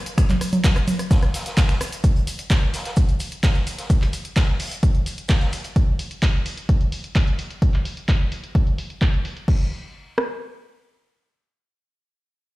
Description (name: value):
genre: house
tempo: 129 BPM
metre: 4/4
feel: straight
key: none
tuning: none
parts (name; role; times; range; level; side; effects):
- punchy analog drum machine; drums; 0.1-9.6 s; cabasa, congas, crash cymbal, finger snaps, handclaps, hi-hat, rim click; -28 LUFS; right 1 dB; low-pass filter on snare, low-pass filter on hats, low-pass filter on perc, low-pass filter on cymbals
- street-band drum kit; drums; 0.1-5.8 s; hi-hat, shaker, snare drum; -34 LUFS; equal; high-pass filter on hats, high-pass filter on snare, high-pass filter on perc, high-pass filter on room
- punchy analog drum machine; drums; 0.2-10.3 s; kick drum, rim click; -18 LUFS; equal; none
room: small room reverb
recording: played on a big sound system in a bare room, stone room reverb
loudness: -19 LUFS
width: side -19 dB against mid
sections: 0.0-2.0 A section; 2.0-9.5 B section; 9.5-12.6 C section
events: drop 0.0-2.0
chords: none